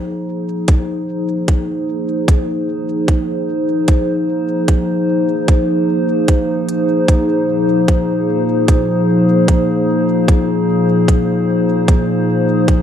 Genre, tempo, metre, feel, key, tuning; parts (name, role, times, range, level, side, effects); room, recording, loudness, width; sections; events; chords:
ambient dub; 75 BPM; 4/4; straight; A4 = 441 Hz
warbly tape-like pad; sustained chords; 0.0-12.8 s; Bb2 to C5; -14 LUFS; equal; chorus, built-in reverb
electronic hi-hat; drums; 0.7-12.8 s; -28 LUFS; right 3 dB
electronic kick drum; drums; 0.7-12.8 s; -13 LUFS; equal
wet echo chamber reverb, RT60 2.2 s; -13 LUFS; side -9 dB against mid
0.0-12.8 A section
0.0 Bb5; 7.1 Bb9sus4